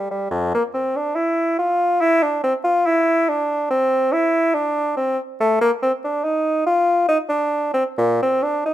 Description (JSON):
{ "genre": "classical, baroque-style fantasia for unaccompanied bassoon", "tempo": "71 BPM", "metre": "3/4", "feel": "rubato", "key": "unclear", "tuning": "A4 = 443 Hz", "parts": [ { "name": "warm bassoon", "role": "solo", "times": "0.0-8.7 s", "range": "F2 to F4", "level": "-17 LUFS", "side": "equal", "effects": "none" } ], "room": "light reverb", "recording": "minimal, uncompressed stereo recording", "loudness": "-17 LUFS", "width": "side -12 dB against mid", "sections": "0.0-8.7 A section", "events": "none", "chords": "none", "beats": "| 0.31 1.15 2.00 | 2.85 3.71 4.55 | 5.40 6.25 7.08 | 7.97" }